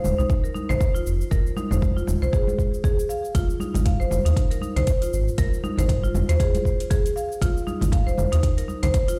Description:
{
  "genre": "afro house",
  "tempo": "118 BPM",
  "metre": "4/4",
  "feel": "swing 58% on 16ths",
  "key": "unclear",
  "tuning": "A4 = 440 Hz",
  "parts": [
    { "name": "marimba with medium hard mallets", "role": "arpeggios", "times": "0.0-9.1 s", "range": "Eb4 to F5", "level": "-30 LUFS", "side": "equal", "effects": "sidechain pumping, tape echo" },
    { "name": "round analog bass", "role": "bass", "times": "0.0-8.9 s", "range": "Eb1 to Eb2", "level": "-24 LUFS", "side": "equal", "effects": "sidechain pumping" },
    { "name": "electronic shaker and hi-hat", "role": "drums", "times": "0.0-9.2 s", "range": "none", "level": "-42 LUFS", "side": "equal", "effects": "overdrive, small room ambience" },
    { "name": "congas", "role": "percussion", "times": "0.0-8.9 s", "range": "none", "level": "-32 LUFS", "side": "equal", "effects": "none" },
    { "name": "electronic kick drum", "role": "drums", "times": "0.3-9.1 s", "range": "none", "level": "-25 LUFS", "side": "equal", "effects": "overdrive, small room ambience" }
  ],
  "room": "light reverb, small room reverb",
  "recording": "played on a big sound system in a bare room, large studio reverb",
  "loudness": "-23 LUFS",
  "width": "mono",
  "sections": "0.0-9.2 A section",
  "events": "none",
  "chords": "0.0 Fm7; 3.3 Ab6"
}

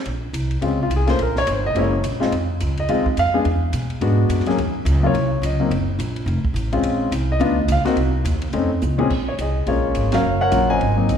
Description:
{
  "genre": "jazz piano trio",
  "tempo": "212 BPM",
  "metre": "4/4",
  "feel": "swing 59% on 8ths",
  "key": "Bb minor",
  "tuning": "A4 = 439 Hz",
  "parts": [
    { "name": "upright bass", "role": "bass", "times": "0.1-11.2 s", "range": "F1 to B2", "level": "-21 LUFS", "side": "equal", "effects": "none" },
    { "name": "compact cocktail drum kit", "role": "drums", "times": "0.1-11.2 s", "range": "crash cymbal, hi-hat, kick drum, ride cymbal, snare drum, toms", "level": "-31 LUFS", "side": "right 2 dB", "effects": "none" },
    { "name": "warm grand piano", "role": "melody", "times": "0.6-11.2 s", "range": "Bb2 to Ab5", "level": "-20 LUFS", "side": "left 2 dB", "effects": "none" }
  ],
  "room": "wet concert hall reverb, RT60 1.9 s",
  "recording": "recorded in a church or concert hall",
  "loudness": "-17 LUFS",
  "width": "side -8 dB against mid",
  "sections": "0.1-9.1 A section; 9.1-11.2 B section",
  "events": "grand piano solo 0.1-9.1; drum fill 8.8; band accent 10.1",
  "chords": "0.1 Bbm9; 1.2 Gm; 1.8 Gb9; 2.3 Fm7; 3.5 E9; 4.6 Eb7(no3); 5.7 Gb; 6.3 F; 6.8 Bbm9; 7.4 Dbadd9; 8.0 Cm; 8.5 F7b13; 9.1 Bbm7; 10.2 Ebm9 (rootless)"
}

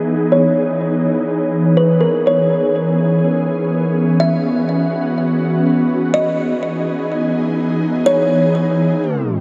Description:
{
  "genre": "hip hop",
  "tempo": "free time",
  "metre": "none",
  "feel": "none",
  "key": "unclear",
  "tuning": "A4 = 440 Hz",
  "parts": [
    { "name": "ethereal airy pad", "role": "sustained chords", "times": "0.0-9.4 s", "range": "E3 to G#4", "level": "-18 LUFS", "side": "equal", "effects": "ensemble chorus, built-in reverb, low-pass filter" },
    { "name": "kalimba", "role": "melody", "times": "0.3-9.4 s", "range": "A#4 to E5", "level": "-21 LUFS", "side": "equal", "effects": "low-pass filter, delay" }
  ],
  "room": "wet huge ambient reverb, RT60 8.7 s",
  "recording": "dreamy mix soaked in reverb, tape stop",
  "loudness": "-16 LUFS",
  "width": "mono",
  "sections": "0.0-9.4 A section",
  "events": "filter sweep 0.0-9.4; tape stop 9.0-9.4",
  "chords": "0.0 Emaj7; 2.3 C#m7; 6.1 Emaj7"
}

